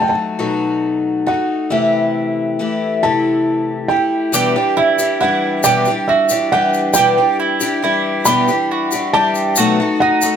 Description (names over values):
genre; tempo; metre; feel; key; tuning
acoustic folk duo or small band; 46 BPM (dotted quarters); 6/8; straight; E minor; A4 = 440 Hz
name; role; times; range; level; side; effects
felt-muted upright piano; melody; 0.0-10.4 s; E5 to B5; -18 LUFS; right 2 dB; plate reverb
picked twelve-string acoustic guitar; accompaniment; 0.0-10.4 s; E2 to G4; -17 LUFS; left 3 dB; none
mandolin; arpeggios; 4.3-10.4 s; D#4 to G4; -18 LUFS; right 6 dB; none
tube shaker; percussion; 4.3-10.4 s; none; -21 LUFS; left 6 dB; none
room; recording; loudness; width
moderate studio reverb, RT60 0.8 s; none; -13 LUFS; side -8 dB against mid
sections
0.0-4.3 A section; 4.3-10.4 B section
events
none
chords
0.0 B7; 1.7 Am7/C; 4.3 Em7; 9.6 B7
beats
0.40 | 1.71 3.03 | 4.34 5.65 | 6.96 8.26 | 9.57